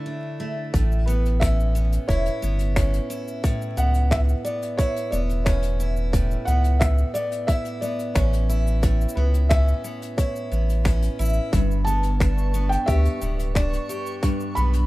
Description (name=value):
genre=folktronica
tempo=89 BPM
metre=4/4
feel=straight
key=A mixolydian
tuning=A4 = 439 Hz
part: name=picked steel-string acoustic guitar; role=arpeggios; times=0.0-14.9 s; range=G2 to G4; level=-29 LUFS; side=equal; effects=none
part: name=warm sub bass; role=bass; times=0.7-14.9 s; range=D1 to D2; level=-20 LUFS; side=equal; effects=none
part: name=electronic kick drum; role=drums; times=0.7-14.4 s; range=none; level=-22 LUFS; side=equal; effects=overdrive
part: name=jazz brush drum kit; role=drums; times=0.7-14.9 s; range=cabasa, finger snaps, hi-hat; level=-34 LUFS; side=left 2 dB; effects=none
part: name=felt-muted upright piano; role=melody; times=1.1-14.9 s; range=B4 to B5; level=-29 LUFS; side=equal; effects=none
part: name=backwards swelling texture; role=texture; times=12.4-14.9 s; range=C#6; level=-38 LUFS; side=right 3 dB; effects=built-in reverb
room=studio reverb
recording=rough home demo mix, vinyl crackle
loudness=-20 LUFS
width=side -18 dB against mid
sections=0.7-14.9 A section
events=break 0.0-0.7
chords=0.0 Dsus2; 0.7 Aadd9; 11.5 G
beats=0.07 | 0.74 1.42 2.09 2.77 | 3.44 4.11 4.79 5.46 | 6.14 6.81 7.49 8.16 | 8.83 9.51 10.18 10.86 | 11.53 12.20 12.88 13.55 | 14.23